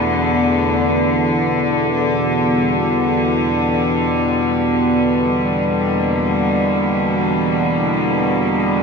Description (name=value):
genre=dark ambient drone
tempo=free time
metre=none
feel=none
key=unclear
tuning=A4 = 440 Hz
part: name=clear studio cello section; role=sustained chords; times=0.0-8.8 s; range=E2 to B3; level=-18 LUFS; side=left 1 dB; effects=none
part: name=analog drone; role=drone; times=0.0-8.8 s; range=E2 to B2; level=-18 LUFS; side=equal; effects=chorus
room=wet huge ambient reverb, RT60 9.1 s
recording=none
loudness=-15 LUFS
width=side -5 dB against mid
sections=0.0-8.8 A section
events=none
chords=0.0 E5; 0.9 Gm